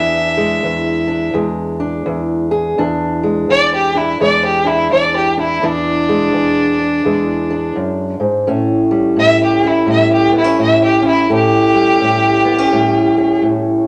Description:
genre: blues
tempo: 84 BPM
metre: 4/4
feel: swing 63% on 8ths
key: unclear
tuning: A4 = 441 Hz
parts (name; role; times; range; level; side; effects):
- rich fiddle; melody; 0.0-13.4 s; D4 to E5; -17 LUFS; equal; none
- fingerpicked old ladder-braced acoustic guitar; accompaniment; 0.0-13.9 s; E2 to G#4; -17 LUFS; equal; none
room: wet studio reverb, RT60 0.6 s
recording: none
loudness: -14 LUFS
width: mono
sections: 0.0-13.9 A section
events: none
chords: 0.0 E7; 8.5 A7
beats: 0.64 1.35 2.06 | 2.77 3.49 4.20 4.91 | 5.62 6.33 7.04 7.75 | 8.46 9.17 9.88 10.59 | 11.30 12.01 12.72 13.43

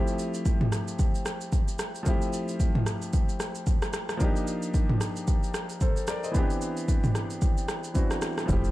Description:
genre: amapiano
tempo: 112 BPM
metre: 4/4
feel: swing 58% on 16ths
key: unclear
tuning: A4 = 442 Hz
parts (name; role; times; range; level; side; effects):
- clear concert grand piano; accompaniment; 0.0-8.7 s; E3 to Eb5; -31 LUFS; equal; none
- deep house drum kit; drums; 0.1-8.7 s; kick drum, rim click, shaker, toms; -26 LUFS; equal; none
- deep log drum bass; bass; 8.5-8.7 s; F1; -25 LUFS; equal; none
room: digital ambience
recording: dark, warm production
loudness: -25 LUFS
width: side -16 dB against mid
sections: 0.0-8.7 A section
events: none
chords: 0.0 Fmaj9; 4.2 Ebmaj9; 6.3 Cmaj9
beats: 0.46 0.99 1.53 | 2.06 2.60 3.13 3.67 | 4.21 4.74 5.28 5.81 | 6.35 6.88 7.42 7.96 | 8.49

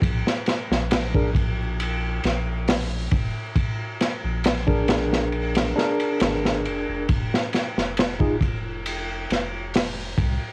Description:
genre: trip hop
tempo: 68 BPM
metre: 4/4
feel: straight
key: unclear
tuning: A4 = 438 Hz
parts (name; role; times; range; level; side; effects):
- soft dub sub bass; bass; 0.0-10.4 s; F1 to C2; -31 LUFS; equal; none
- crunchy breakbeat drum kit; drums; 0.0-10.4 s; hi-hat, kick drum, ride cymbal, snare drum; -25 LUFS; equal; none
- tine electric piano; accompaniment; 1.1-8.4 s; D4 to Bb4; -29 LUFS; equal; harmonic tremolo, cassette tape, tape echo
room: studio ambience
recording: home recording on cassette, vinyl crackle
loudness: -24 LUFS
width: mono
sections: 0.0-10.5 A section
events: none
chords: 0.0 Bb7; 7.1 N.C.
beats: | 0.03 0.92 1.80 2.68 | 3.56 4.45 5.33 6.21 | 7.09 7.97 8.86 9.74

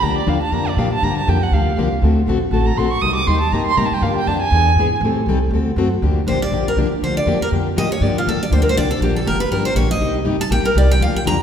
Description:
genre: acoustic string swing (jazz manouche)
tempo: 240 BPM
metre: 4/4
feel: swing 56% on 8ths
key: G minor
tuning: A4 = 441 Hz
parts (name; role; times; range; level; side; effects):
- dark violin; second line; 0.0-5.0 s; D5 to Eb6; -20 LUFS; right 5 dB; none
- picked plugged-in steel-string acoustic guitar; accompaniment; 0.0-11.4 s; C3 to A4; -20 LUFS; left 4 dB; none
- upright bass; bass; 0.0-11.4 s; F1 to Bb2; -19 LUFS; equal; none
- picked steel-string acoustic guitar; melody; 6.3-11.4 s; F4 to Bb5; -20 LUFS; right 1 dB; none
room: wet concert hall reverb, RT60 1.8 s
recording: recorded in a church or concert hall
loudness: -15 LUFS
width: side -8 dB against mid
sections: 0.0-6.0 A section; 6.0-11.4 A section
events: violin solo 0.0-6.0; steel-string acoustic guitar solo 6.0-11.4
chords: 0.0 Gm7; 2.0 D7; 3.0 Cm7; 4.0 Gm7; 4.5 E7; 5.0 Am7b5; 5.5 D7; 6.0 Gm7; 10.0 Cm7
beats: | 0.02 0.27 0.52 0.77 | 1.02 1.27 1.52 1.77 | 2.02 2.27 2.52 2.77 | 3.02 3.27 3.52 3.77 | 4.02 4.27 4.52 4.76 | 5.01 5.26 5.51 5.76 | 6.01 6.26 6.51 6.76 | 7.01 7.26 7.51 7.76 | 8.01 8.26 8.51 8.76 | 9.01 9.26 9.51 9.76 | 10.01 10.26 10.51 10.76 | 11.01 11.26

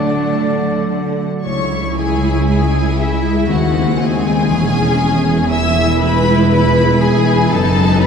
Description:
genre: classical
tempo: 119 BPM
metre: 4/4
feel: straight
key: C# minor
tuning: A4 = 438 Hz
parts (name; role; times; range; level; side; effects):
- warm symphonic violin section; melody; 0.0-8.1 s; E5 to E6; -22 LUFS; left 3 dB; none
- warm oboe; second line; 0.0-0.9 s; D5; -26 LUFS; left 1 dB; none
- warm symphonic violin section; second line; 0.0-8.1 s; D4 to E5; -20 LUFS; left 2 dB; none
- clear symphonic viola section; accompaniment; 0.0-8.1 s; G#3 to E4; -19 LUFS; equal; none
- concert harp; arpeggios; 0.0-8.1 s; F#2 to C#6; -21 LUFS; left 5 dB; none
- warm symphonic cello section; bass; 0.0-8.1 s; C#2 to D3; -19 LUFS; right 2 dB; none
- warm studio double bass section; bass; 1.5-8.1 s; E1 to D#2; -20 LUFS; right 3 dB; none
room: wet cathedral reverb, RT60 4.7 s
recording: dark, warm production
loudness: -12 LUFS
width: side -6 dB against mid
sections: 0.0-1.5 A section; 1.5-8.1 B section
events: none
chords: 0.0 D; 1.5 C#m; 3.5 G#7/D#; 4.5 C#m/E; 5.5 E; 7.5 B7/F#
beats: 0.43 0.95 | 1.46 1.98 2.49 3.00 | 3.50 4.01 4.51 5.01 | 5.51 6.02 6.52 7.02 | 7.52 8.02

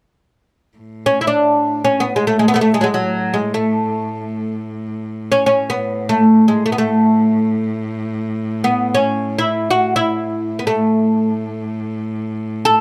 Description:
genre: persian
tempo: free time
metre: none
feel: none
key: A dastgah mahur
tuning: A4 = 440 Hz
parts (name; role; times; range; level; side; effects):
- rich cello; drone; 0.8-12.8 s; A2; -27 LUFS; equal; none
- oud; melody; 1.1-12.8 s; F#3 to A4; -17 LUFS; equal; none
room: light reverb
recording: close, detailed microphones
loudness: -17 LUFS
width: mono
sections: 0.8-12.8 A section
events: none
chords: none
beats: free time

